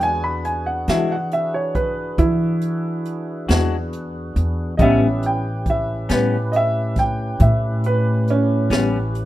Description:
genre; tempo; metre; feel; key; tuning
slow blues; 46 BPM (dotted quarters); 12/8; straight; unclear; A4 = 442 Hz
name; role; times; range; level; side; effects
clear upright piano; accompaniment; 0.0-9.1 s; F#3 to B5; -22 LUFS; right 2 dB; none
tonewheel organ; sustained chords; 0.0-9.3 s; C#4 to B4; -30 LUFS; equal; slow rotary speaker
upright bass; bass; 0.0-9.3 s; A1 to E3; -21 LUFS; equal; none
jazz brush drum kit; drums; 0.0-9.3 s; hi-hat, kick drum, snare drum; -23 LUFS; equal; none
semi-hollow electric guitar; accompaniment; 0.9-9.0 s; A2 to F#4; -20 LUFS; left 4 dB; harmonic tremolo
room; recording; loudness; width
small room ambience; rough home demo mix; -17 LUFS; side -14 dB against mid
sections
0.0-9.3 A section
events
upright piano solo 0.0-9.3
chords
0.0 E9; 4.8 A9

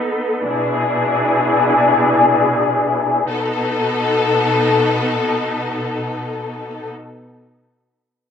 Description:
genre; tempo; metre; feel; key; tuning
trip hop; free time; none; none; unclear; A4 = 440 Hz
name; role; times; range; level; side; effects
dark studio string section; sustained chords; 0.0-6.9 s; B2 to A4; -15 LUFS; left 2 dB; low-pass filter
wind-like tuned noise texture; texture; 0.0-3.3 s; B4; -29 LUFS; equal; none
room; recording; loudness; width
wet spring reverb, RT60 1.5 s; none; -15 LUFS; side -8 dB against mid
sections
0.0-3.3 A section; 3.3-6.1 B section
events
filter sweep on string section 0.0-3.3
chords
0.5 E7/B; 3.3 B7

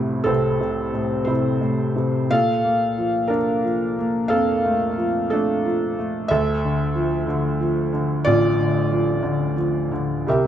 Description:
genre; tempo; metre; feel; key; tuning
classical, lyrical solo piano; 60 BPM (dotted quarters); 6/8; uneven beats, rubato; D minor; A4 = 436 Hz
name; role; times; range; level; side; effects
felt-muted upright piano; solo; 0.0-10.5 s; A1 to F5; -19 LUFS; equal; none
room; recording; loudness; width
moderate recital hall reverb, RT60 1.3 s; minimal, uncompressed stereo recording; -19 LUFS; side -10 dB against mid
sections
0.0-10.3 A section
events
none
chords
0.0 Am/C; 2.3 Bbmaj7; 6.3 Dmadd9

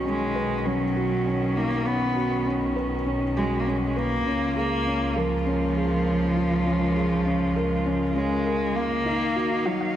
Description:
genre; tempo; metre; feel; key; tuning
piano and strings electronica; 100 BPM; 4/4; straight; unclear; A4 = 440 Hz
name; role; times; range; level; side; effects
warm string quartet; sustained chords; 0.0-10.0 s; B2 to F5; -32 LUFS; right 1 dB; none
felt-muted upright piano; riff; 0.0-10.0 s; C#4 to F5; -27 LUFS; left 1 dB; none
clear chamber double bass section; bass; 0.0-9.0 s; B1 to Db2; -31 LUFS; equal; none
warm cello; melody; 0.1-10.0 s; F3 to B3; -26 LUFS; right 1 dB; none
analog pluck; arpeggios; 9.1-9.8 s; Eb4 to F5; -35 LUFS; left 2 dB; none
room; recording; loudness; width
wet echo chamber reverb, RT60 1.8 s, small room ambience; dark, warm production; -22 LUFS; side -11 dB against mid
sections
0.0-9.1 A section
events
none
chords
0.0 Badd9; 4.3 Db6; 9.1 Ebmadd9

